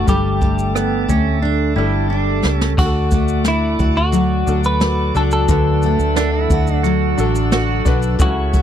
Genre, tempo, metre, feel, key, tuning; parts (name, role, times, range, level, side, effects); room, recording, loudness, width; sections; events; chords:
acoustic pop; 89 BPM; 4/4; straight; D major; A4 = 440 Hz
semi-hollow electric guitar; melody; 0.0-8.6 s; E4 to B4; -22 LUFS; equal
clear concert grand piano; accompaniment; 0.0-8.6 s; G3 to B4; -26 LUFS; left 8 dB
picked steel-string acoustic guitar; accompaniment; 0.0-8.6 s; C#3 to G4; -21 LUFS; left 1 dB; double-tracked left and right
bright tonewheel organ; sustained chords; 0.0-8.6 s; A4 to E6; -29 LUFS; left 1 dB; overdrive, slow rotary speaker
vintage muted fingered electric bass; bass; 0.0-8.6 s; G1 to D2; -19 LUFS; equal
jazz brush drum kit; drums; 0.1-8.6 s; crash cymbal, kick drum, rim click, shaker, snare drum; -19 LUFS; equal
pedal steel guitar; second line; 0.8-8.0 s; B3 to F#4; -22 LUFS; right 16 dB
small room ambience; dry, close 1970s-style studio recording; -14 LUFS; side -10 dB against mid
0.0-2.8 A section; 2.8-8.6 B section
drum fill 1.4-2.8
0.0 Gsus2; 2.8 D